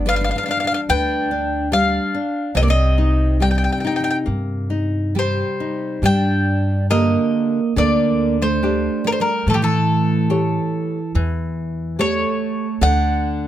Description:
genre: fado-style ballad.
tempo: 71 BPM.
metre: 4/4.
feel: rubato.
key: C minor, G harmonic minor from 6.0 s.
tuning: A4 = 439 Hz.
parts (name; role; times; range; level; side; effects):
bowl-back mandolin; melody; 0.0-13.5 s; G4 to G5; -22 LUFS; left 2 dB; none.
nylon-string guitar; accompaniment; 0.0-13.5 s; C3 to D5; -23 LUFS; left 3 dB; none.
upright bass; bass; 0.0-13.5 s; G1 to A2; -21 LUFS; equal; none.
picked twelve-string acoustic guitar; second line; 0.1-13.5 s; E3 to Eb4; -22 LUFS; right 5 dB; none.
room: light reverb.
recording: close, detailed microphones.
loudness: -17 LUFS.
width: side -12 dB against mid.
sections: 0.0-6.0 A section; 6.0-13.5 B section.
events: none.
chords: 0.0 G; 2.5 Cm7; 6.0 Gm; 9.5 A7; 12.8 D.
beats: 0.06 0.88 1.71 | 2.55 3.40 4.26 5.14 | 6.02 6.88 7.75 8.61 | 9.46 10.30 11.14 11.98 | 12.81.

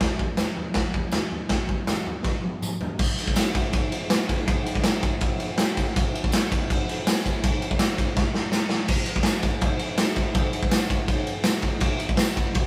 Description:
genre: rock.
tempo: 163 BPM.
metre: 4/4.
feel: straight.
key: none.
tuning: none.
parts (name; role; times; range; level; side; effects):
raw garage drum kit; drums; 0.0-12.6 s; crash cymbal, kick drum, ride cymbal, snare drum, toms; -24 LUFS; equal; none.
tambourine; percussion; 0.4-12.3 s; none; -39 LUFS; equal; none.
room: light reverb.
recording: rough rehearsal-room recording.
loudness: -25 LUFS.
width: mono.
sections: 0.0-3.0 A section; 3.0-12.7 B section.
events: drum fill 2.2-3.0, 8.2-8.9.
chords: none.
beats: | 0.00 0.38 0.75 1.13 | 1.50 1.87 2.25 2.62 | 2.99 3.36 3.73 4.11 | 4.47 4.84 5.21 5.58 | 5.95 6.32 6.69 7.05 | 7.42 7.79 8.16 8.52 | 8.89 9.26 9.62 9.99 | 10.35 10.72 11.09 11.45 | 11.82 12.19 12.55.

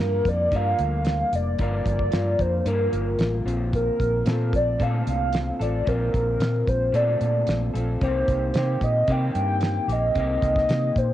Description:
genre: indie pop, bedroom pop.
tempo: 112 BPM.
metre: 4/4.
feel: straight.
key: unclear.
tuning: A4 = 440 Hz.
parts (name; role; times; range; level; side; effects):
warbly nostalgic lead; melody; 0.0-11.1 s; Bb4 to G5; -24 LUFS; equal; lush chorus, cassette tape, tape echo.
electric guitar through a small old amp; accompaniment; 0.0-11.1 s; G2 to Bb4; -29 LUFS; left 2 dB; wide subtle chorus, vibrato effect, cassette tape.
vintage muted fingered electric bass; bass; 0.0-11.1 s; F1 to C3; -25 LUFS; equal; none.
damped 70s drum kit; drums; 0.3-11.1 s; hi-hat, kick drum, snare drum; -27 LUFS; equal; cassette tape.
room: light reverb, studio reverb.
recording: home recording on cassette.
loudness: -21 LUFS.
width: side -12 dB against mid.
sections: 0.0-11.1 A section.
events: none.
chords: 0.0 Gm7; 3.5 Bbmaj9; 8.0 Cm7.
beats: 0.52 1.06 | 1.59 2.13 2.67 3.20 | 3.74 4.27 4.81 5.34 | 5.88 6.41 6.95 7.48 | 8.02 8.55 9.09 9.62 | 10.16 10.69.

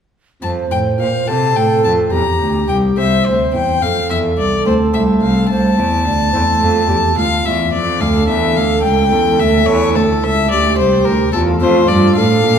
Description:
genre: classical, baroque-style sonata movement with continuo.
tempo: 72 BPM (dotted quarters).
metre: 12/8.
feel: straight.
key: F major.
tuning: A4 = 440 Hz.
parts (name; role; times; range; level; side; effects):
warm violin; melody; 0.4-12.6 s; A4 to Bb5; -17 LUFS; left 5 dB; none.
mellow baroque flute; second line; 0.4-12.6 s; F4 to D5; -18 LUFS; right 5 dB; none.
chamber organ, sparkling flutes; accompaniment; 0.4-12.6 s; C2 to C5; -19 LUFS; left 1 dB; none.
rich cello; bass; 0.4-12.6 s; C2 to C3; -18 LUFS; right 1 dB; none.
room: wet recital hall reverb, RT60 1.5 s.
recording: heard from further back in the room.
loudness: -12 LUFS.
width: side -8 dB against mid.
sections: 0.4-12.6 A section.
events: none.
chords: 0.4 F; 2.1 C7; 3.8 F; 7.2 Dm; 8.8 A7/C#; 10.5 Dm.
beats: | 0.42 1.28 2.13 2.98 | 3.82 4.66 5.50 6.34 | 7.18 8.01 8.85 9.68 | 10.51 11.34 12.17.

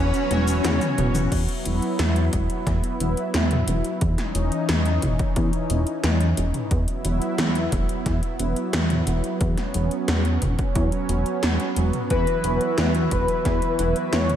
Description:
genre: synthwave.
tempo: 89 BPM.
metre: 4/4.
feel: straight.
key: unclear.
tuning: A4 = 440 Hz.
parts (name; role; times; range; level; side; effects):
expressive portamento lead; melody; 0.0-1.2, 12.1-14.4 s; C#4 to C#5; -26 LUFS; left 1 dB; ensemble chorus, cassette tape, analog delay.
string machine, violins; second line; 0.0-1.2 s; C#4; -33 LUFS; left 1 dB; ensemble chorus, diffuse ambient delay.
lush unison pad; sustained chords; 0.0-14.4 s; E3 to E4; -27 LUFS; right 1 dB; chorus, sidechain pumping.
chorused polysynth; stabs; 0.0-1.3, 12.1-14.4 s; E3 to C#5; -29 LUFS; left 2 dB; diffuse ambient delay.
chorused synth bass; bass; 0.0-14.4 s; E1 to E2; -23 LUFS; equal; sidechain pumping.
80s electronic pad drums; drums; 0.1-14.4 s; cabasa, crash cymbal, hi-hat, snare drum, toms; -27 LUFS; equal; gated reverb on snare and toms, overdrive.
electronic kick drum; drums; 1.3-13.6 s; none; -25 LUFS; equal; overdrive.
room: light reverb.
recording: none.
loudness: -20 LUFS.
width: side -10 dB against mid.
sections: 0.0-1.3 A section; 1.3-14.4 B section.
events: drum fill 0.3-1.3.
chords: 0.0 Bsus2/E; 1.3 Esus2; 4.0 C#madd9/E; 6.7 Esus2; 9.4 Bsus2/E; 12.1 Esus2.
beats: 0.64 | 1.32 1.99 2.67 3.34 | 4.01 4.69 5.36 6.04 | 6.71 7.38 8.06 8.73 | 9.41 10.08 10.76 11.43 | 12.10 12.78 13.45 14.13.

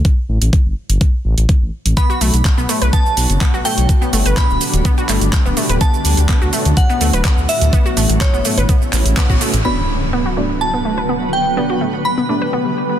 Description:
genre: progressive house.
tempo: 125 BPM.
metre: 4/4.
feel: straight.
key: B minor.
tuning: A4 = 438 Hz.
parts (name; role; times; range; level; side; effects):
dark detuned saw bass; bass; 0.0-9.6 s; D1 to D2; -15 LUFS; equal; sidechain pumping.
electronic kick drum; drums; 0.0-9.4 s; none; -14 LUFS; equal; overdrive.
pop drum kit; drums; 0.0-9.6 s; handclaps, hi-hat, shaker; -22 LUFS; right 2 dB; overdrive.
glassy synth bell; melody; 2.0-13.0 s; C#5 to B5; -22 LUFS; right 1 dB; chorus, tape echo.
shimmering ambient pad; sustained chords; 2.7-13.0 s; A2 to B4; -22 LUFS; equal; chorus, built-in reverb, sidechain pumping.
wide unison pluck; arpeggios; 2.0-12.6 s; A3 to B4; -21 LUFS; equal; sidechain pumping, tape echo.
deep mellow chord stab; stabs; 9.6-13.0 s; B3 to D5; -25 LUFS; right 2 dB; chorus, sidechain pumping, tape echo.
impact; sound effects; 9.6-11.6 s; none; -25 LUFS; equal; none.
room: digital ambience.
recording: dense, heavily limited modern master.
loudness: -13 LUFS.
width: side -10 dB against mid.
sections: 0.0-9.7 A section; 9.7-13.0 B section.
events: band accent 9.2; impact 9.7-11.6; filter sweep on synth stab 9.7-13.0.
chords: 0.1 Gsus2; 2.0 Bm; 3.9 G; 5.8 D; 7.7 A; 9.7 Bm; 11.6 G.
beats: | 0.05 0.53 1.01 1.49 | 1.97 2.45 2.93 3.41 | 3.89 4.37 4.85 5.33 | 5.81 6.29 6.77 7.25 | 7.73 8.21 8.69 9.17 | 9.65 10.13 10.61 11.09 | 11.57 12.05 12.53.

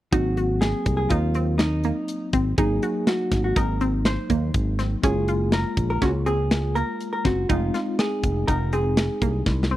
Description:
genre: progressive instrumental, band music in an uneven meter.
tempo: 122 BPM.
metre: 5/4.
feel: straight.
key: Ab mixolydian.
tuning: A4 = 437 Hz.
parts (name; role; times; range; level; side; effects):
vintage hollow-body jazz guitar; melody; 0.1-9.4 s; Eb4 to C5; -27 LUFS; right 1 dB; none.
tine electric piano; accompaniment; 0.1-9.8 s; Gb3 to F4; -29 LUFS; left 2 dB; fast stereo tremolo.
glassy wavetable pluck; arpeggios; 0.1-9.8 s; Bb3 to Gb4; -29 LUFS; right 1 dB; chorus.
fingered electric bass; bass; 0.1-9.8 s; F1 to Eb2; -24 LUFS; equal; none.
tight metal drum kit; drums; 0.1-9.7 s; hi-hat, kick drum, snare drum; -24 LUFS; equal; none.
room: small room ambience.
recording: dry, close 1970s-style studio recording.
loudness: -20 LUFS.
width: side -14 dB against mid.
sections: 0.1-9.8 A section.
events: drum fill 9.5-9.8.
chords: 0.1 Ab7; 5.0 Gbmaj7; 7.5 Fm7.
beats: | 0.13 0.62 1.11 1.60 2.09 | 2.58 3.08 3.57 4.06 4.55 | 5.04 5.53 6.02 6.51 7.00 | 7.49 7.99 8.48 8.97 9.46.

